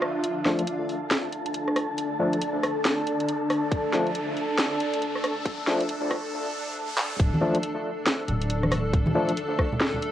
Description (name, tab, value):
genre	deep dubstep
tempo	138 BPM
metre	4/4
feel	swing 61% on 16ths, half-time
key	D minor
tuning	A4 = 440 Hz
part	granular cloud pad	sustained chords	0.0-10.1 s	D4 to A4	-29 LUFS	equal	built-in reverb
part	garage drum kit	drums	0.0-10.1 s	handclaps, hi-hat, rim click, snare drum	-27 LUFS	equal	overdrive, small room reverb, cassette tape
part	noise sweep and riser	sound effects	0.0-7.2 s	none	-39 LUFS	equal	none
part	wind-like tuned noise texture	texture	0.0-6.3 s	F4 to A5	-35 LUFS	left 1 dB	built-in reverb
part	overdriven tine electric piano	stabs	0.5-9.3 s	F3 to D4	-28 LUFS	left 2 dB	fast tremolo, low-pass filter, dub echo
part	electronic kick drum	drums	3.7-9.7 s	none	-25 LUFS	equal	overdrive, small room reverb, cassette tape
part	soft dub sub bass	bass	7.2-9.1 s	D1	-27 LUFS	equal	none
part	congas	percussion	7.3-10.0 s	none	-30 LUFS	equal	none
room	moderate studio reverb, RT60 0.6 s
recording	home recording on cassette, high-pass filter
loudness	-24 LUFS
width	side -11 dB against mid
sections	0.2-7.2 A section; 7.2-10.1 B section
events	noise sweep 0.0; build-up 0.2-7.2; riser 0.2-7.2; filter sweep on tine electric piano 0.2-7.2; filter sweep on ambient pad 0.2-7.2; filter sweep 0.2-7.2; break 6.3-7.2; drum fill 7.0; drop 7.2-10.1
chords	0.2 D5